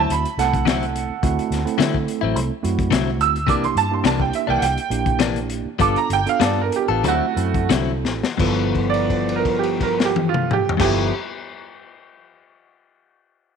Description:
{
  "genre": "straight-eighth soul blues",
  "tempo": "85-107 BPM",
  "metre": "4/4",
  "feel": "straight",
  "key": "G mixolydian",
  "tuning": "A4 = 440 Hz",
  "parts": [
    { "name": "clear upright piano", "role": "second line", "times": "0.0-11.1 s", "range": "A3 to E6", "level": "-22 LUFS", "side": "right 10 dB", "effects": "none" },
    { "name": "mellow tine electric piano", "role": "accompaniment", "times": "0.0-11.1 s", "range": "A3 to A4", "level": "-26 LUFS", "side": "right 10 dB", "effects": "fast stereo tremolo" },
    { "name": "direct-recorded clean electric guitar", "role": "stabs", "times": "0.0-11.1 s", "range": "G2 to A4", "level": "-24 LUFS", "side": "left 12 dB", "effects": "none" },
    { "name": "vintage muted fingered electric bass", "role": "bass", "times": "0.0-11.1 s", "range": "G1 to D3", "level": "-25 LUFS", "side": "left 1 dB", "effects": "none" },
    { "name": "crunchy breakbeat drum kit", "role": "drums", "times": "0.1-11.0 s", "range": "crash cymbal, hi-hat, kick drum, snare drum, toms", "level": "-24 LUFS", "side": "left 5 dB", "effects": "none" }
  ],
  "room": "light reverb",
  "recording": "1960s-style stereo with parts hard left and right",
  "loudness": "-18 LUFS",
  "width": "side -6 dB against mid",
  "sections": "0.0-8.4 A section; 8.4-11.2 B section",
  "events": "upright piano solo 0.0-8.4; slowing down 3.5-8.4; drum fill 8.0-8.4; held note 8.4-10.8",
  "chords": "0.0 D9; 3.5 C9; 5.8 G9; 7.0 D9; 8.4 G13"
}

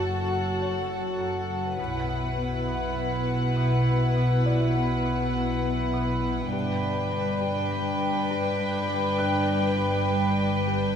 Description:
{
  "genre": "cinematic, suspense film score",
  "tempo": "101 BPM",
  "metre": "4/4",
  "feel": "straight",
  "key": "unclear",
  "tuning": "A4 = 442 Hz",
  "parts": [
    { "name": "warm studio violin section", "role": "melody", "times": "0.0-11.0 s", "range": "F#5 to G5", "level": "-32 LUFS", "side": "left 2 dB", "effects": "none" },
    { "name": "clear studio violin section", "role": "second line", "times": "0.0-11.0 s", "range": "A4 to B4", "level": "-32 LUFS", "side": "left 3 dB", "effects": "none" },
    { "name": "dark studio viola section", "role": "accompaniment", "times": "0.0-11.0 s", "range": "D4 to F#4", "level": "-32 LUFS", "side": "right 1 dB", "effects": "none" },
    { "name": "glass harmonica", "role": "sustained chords", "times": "0.0-11.0 s", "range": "C#5 to B5", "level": "-34 LUFS", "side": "right 1 dB", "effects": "none" },
    { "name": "marimba with medium hard mallets", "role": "riff", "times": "0.0-10.9 s", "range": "F#2 to B3", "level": "-30 LUFS", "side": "left 4 dB", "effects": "none" },
    { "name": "dark studio double bass section", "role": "bass", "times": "0.0-11.0 s", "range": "F#1 to B1", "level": "-32 LUFS", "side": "right 2 dB", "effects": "none" },
    { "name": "warm studio cello section", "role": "bass", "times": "0.0-11.0 s", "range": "F#2 to B2", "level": "-32 LUFS", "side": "right 3 dB", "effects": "none" },
    { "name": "dark baby grand piano", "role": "texture", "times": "0.0-11.0 s", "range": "F#4 to F#6", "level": "-42 LUFS", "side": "right 1 dB", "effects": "none" }
  ],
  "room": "wet concert hall reverb, RT60 1.9 s",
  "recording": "minimal, uncompressed stereo recording",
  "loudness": "-23 LUFS",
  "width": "side -8 dB against mid",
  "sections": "0.0-11.0 A section",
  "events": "none",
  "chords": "0.0 F#m; 1.8 Bsus4; 6.5 G"
}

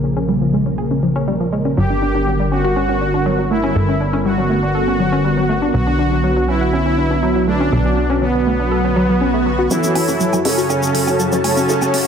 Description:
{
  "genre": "melodic techno",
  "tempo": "121 BPM",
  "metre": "4/4",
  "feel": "straight",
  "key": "unclear",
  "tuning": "A4 = 440 Hz",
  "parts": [
    { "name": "warm analog pad", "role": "sustained chords", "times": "0.0-12.1 s", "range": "C#3 to A5", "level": "-19 LUFS", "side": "equal", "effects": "chorus" },
    { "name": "analog pluck", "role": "arpeggios", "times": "0.0-12.0 s", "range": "E#3 to A4", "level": "-20 LUFS", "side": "left 1 dB", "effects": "chorus, ping-pong delay" },
    { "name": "plucky analog bass", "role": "bass", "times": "0.0-11.8 s", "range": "F#1 to C#2", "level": "-22 LUFS", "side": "equal", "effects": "high-pass filter" },
    { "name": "soft supersaw", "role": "melody", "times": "1.8-12.1 s", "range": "C#3 to G4", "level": "-19 LUFS", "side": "right 1 dB", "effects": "tape echo" },
    { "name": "swell and riser", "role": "sound effects", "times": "8.9-12.1 s", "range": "none", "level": "-30 LUFS", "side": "left 1 dB", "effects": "none" },
    { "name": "bowed-like drone", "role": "drone", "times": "9.9-12.1 s", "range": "F#2", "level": "-28 LUFS", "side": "left 1 dB", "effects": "built-in reverb" },
    { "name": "electronic shaker, hi-hat and woodblock", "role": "drums", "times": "9.7-12.0 s", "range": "none", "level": "-22 LUFS", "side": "right 2 dB", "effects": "low-pass filter on cymbals, low-pass filter on perc, low-pass filter on hats, low-pass filter on room" }
  ],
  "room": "moderate plate reverb, RT60 2.1 s",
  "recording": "dreamy mix soaked in reverb",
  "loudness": "-14 LUFS",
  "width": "side -7 dB against mid",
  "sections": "0.0-9.7 A section; 9.7-12.1 B section",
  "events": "filter sweep on synth arpeggio sound 0.0-9.7; filter sweep on analog synth pad 0.0-9.7; swell 8.9-9.7; build-up 9.7-12.1",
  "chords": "0.0 A#m; 1.8 G; 5.7 Bm; 9.7 F#m"
}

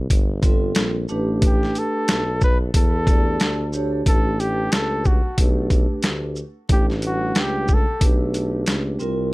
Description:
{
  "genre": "hip hop, jazz-hop",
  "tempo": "91 BPM",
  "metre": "4/4",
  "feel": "swing 59% on 16ths",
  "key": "A mixolydian",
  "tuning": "A4 = 440 Hz",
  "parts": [
    { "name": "mellow tuba", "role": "bass", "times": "0.0-9.3 s", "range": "G1 to E2", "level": "-25 LUFS", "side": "equal", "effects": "none" },
    { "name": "boom bap sampler-style drum kit", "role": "drums", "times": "0.1-9.2 s", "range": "hi-hat, kick drum, shaker, snare drum", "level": "-18 LUFS", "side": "equal", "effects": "none" },
    { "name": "vibraphone with soft mallets", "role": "accompaniment", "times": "0.4-9.3 s", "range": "G3 to D5", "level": "-26 LUFS", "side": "right 1 dB", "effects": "none" },
    { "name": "warm flugelhorn", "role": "melody", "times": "1.5-8.0 s", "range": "F#4 to B4", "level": "-25 LUFS", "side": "equal", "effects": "tape echo" }
  ],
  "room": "little or no reverb",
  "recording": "none",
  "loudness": "-18 LUFS",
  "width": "side -21 dB against mid",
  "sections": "0.0-4.1 A section; 4.1-9.3 B section",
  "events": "flugelhorn solo 4.1-9.3",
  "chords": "0.0 C7sus4; 1.1 A9sus4"
}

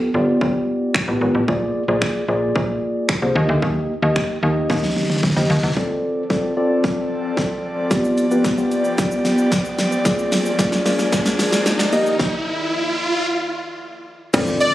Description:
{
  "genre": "dance-pop",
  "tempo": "112 BPM",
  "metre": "4/4",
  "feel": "straight",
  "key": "unclear",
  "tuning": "A4 = 440 Hz",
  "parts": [
    { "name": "mellow tine electric piano", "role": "accompaniment", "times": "0.0-14.7 s", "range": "Bb3 to Eb5", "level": "-20 LUFS", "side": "left 1 dB", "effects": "wide subtle chorus, sidechain pumping" },
    { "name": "slap-like FM bass", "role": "bass", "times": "0.1-5.7, 14.3-14.5 s", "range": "G1 to F2", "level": "-21 LUFS", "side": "equal", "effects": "sidechain pumping" },
    { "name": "pop drum kit", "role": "drums", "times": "0.4-14.7 s", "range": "crash cymbal, finger snaps, hi-hat, kick drum, shaker, snare drum", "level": "-21 LUFS", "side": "equal", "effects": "overdrive" },
    { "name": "airy breathy pad", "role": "sustained chords", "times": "5.8-14.7 s", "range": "D3 to Eb5", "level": "-24 LUFS", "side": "equal", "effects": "chorus, sidechain pumping" },
    { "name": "riser and impact", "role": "sound effects", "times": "8.1-14.7 s", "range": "none", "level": "-25 LUFS", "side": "equal", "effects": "none" },
    { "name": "airy dreamy lead", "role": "melody", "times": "14.6-14.7 s", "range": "D5", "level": "-14 LUFS", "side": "equal", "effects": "chorus, sidechain pumping" }
  ],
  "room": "moderate plate reverb, RT60 1.6 s",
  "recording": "recorded on a phone in the room, studio reverb",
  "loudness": "-17 LUFS",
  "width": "side -14 dB against mid",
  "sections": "0.0-5.8 A section; 5.8-14.3 B section",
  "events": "drum fill 4.7-5.8, 5.8-12.2; build-up 5.8-14.3; riser 8.1-14.3; stop 12.2-14.3; impact 14.3-14.7",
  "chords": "0.0 G7; 1.5 Bb7; 3.4 Eb; 5.8 F6; 7.9 G7; 10.1 Bb7; 11.9 Eb"
}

